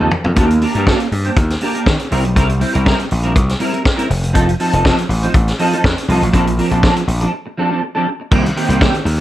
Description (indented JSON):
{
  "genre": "disco",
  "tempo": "121 BPM",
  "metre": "4/4",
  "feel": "straight",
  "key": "C dorian",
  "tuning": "A4 = 440 Hz",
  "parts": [
    { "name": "clean electric guitar", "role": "accompaniment", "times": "0.0-9.2 s", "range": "Eb3 to C5", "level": "-17 LUFS", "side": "right 1 dB", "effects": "ensemble chorus" },
    { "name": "gritty slap bass", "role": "bass", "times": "0.0-9.2 s", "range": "F1 to Eb3", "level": "-16 LUFS", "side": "equal", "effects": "overdrive" },
    { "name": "vintage drum kit", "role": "drums", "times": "0.1-9.2 s", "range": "crash cymbal, hi-hat, kick drum, snare drum, toms", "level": "-17 LUFS", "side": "equal", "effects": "gated reverb" }
  ],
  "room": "small room ambience",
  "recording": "none",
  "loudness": "-13 LUFS",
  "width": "side -14 dB against mid",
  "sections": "0.4-8.3 A section",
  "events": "drum fill 0.0-0.4; break 7.3-8.3",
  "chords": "0.4 Ebmaj7; 2.1 C7; 4.1 F7; 6.3 Bbmaj9; 8.3 Cm7",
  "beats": "| 0.37 0.87 1.36 1.86 | 2.36 2.85 3.35 3.85 | 4.35 4.84 5.34 5.83 | 6.33 6.83 7.32 7.82 | 8.31 8.81"
}